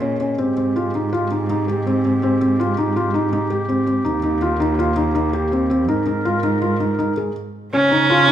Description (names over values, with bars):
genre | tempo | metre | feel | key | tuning
contemporary instrumental, chamber music in an uneven meter | 164 BPM | 5/4 | straight | Ab major | A4 = 440 Hz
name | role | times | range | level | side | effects
mellow woodwind section | sustained chords | 0.0-8.3 s | Eb3 to Bb4 | -27 LUFS | left 1 dB | none
felt-muted upright piano | arpeggios | 0.0-8.3 s | C4 to Ab4 | -19 LUFS | left 1 dB | none
warm cello | bass | 0.0-8.3 s | Eb2 to Db3 | -23 LUFS | right 2 dB | none
clear viola | second line | 7.7-8.3 s | Db4 | -14 LUFS | right 3 dB | none
room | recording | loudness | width
moderate recital hall reverb, RT60 1.5 s | recorded in a church or concert hall | -17 LUFS | side -10 dB against mid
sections
0.0-7.7 A section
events
stop 7.4-7.7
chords
0.4 Abmaj7; 4.1 Eb; 5.9 Absus2; 7.7 Dbadd9